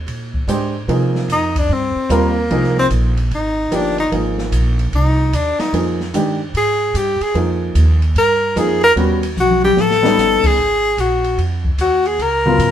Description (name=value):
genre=modal jazz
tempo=149 BPM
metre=4/4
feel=swing 65% on 8ths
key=F dorian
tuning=A4 = 441 Hz
part: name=upright bass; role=bass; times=0.0-12.7 s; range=G1 to C3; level=-19 LUFS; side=right 1 dB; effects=none
part: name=open jazz drum kit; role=drums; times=0.1-12.7 s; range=crash cymbal, hi-hat, kick drum, ride cymbal, snare drum, toms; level=-25 LUFS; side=left 1 dB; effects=none
part: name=warm baby grand piano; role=accompaniment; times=0.5-12.7 s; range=C#3 to C5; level=-19 LUFS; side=equal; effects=none
part: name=warm tenor saxophone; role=melody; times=1.3-12.7 s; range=Bb3 to Bb4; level=-15 LUFS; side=left 1 dB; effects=none
room=light reverb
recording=band playing live in one room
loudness=-14 LUFS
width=side -10 dB against mid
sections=0.0-10.6 A section; 10.6-12.7 A section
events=tenor saxophone solo 0.0-12.7; drum fill 9.4-10.2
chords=0.0 Fm11; 9.0 Eb7alt; 10.6 G#9sus4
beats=0.08 0.48 | 0.89 1.29 1.70 2.10 | 2.51 2.91 3.31 3.72 | 4.12 4.53 4.93 5.33 | 5.74 6.14 6.54 6.95 | 7.35 7.76 8.16 8.56 | 8.96 9.37 9.77 10.18 | 10.58 10.98 11.38 11.79 | 12.19 12.60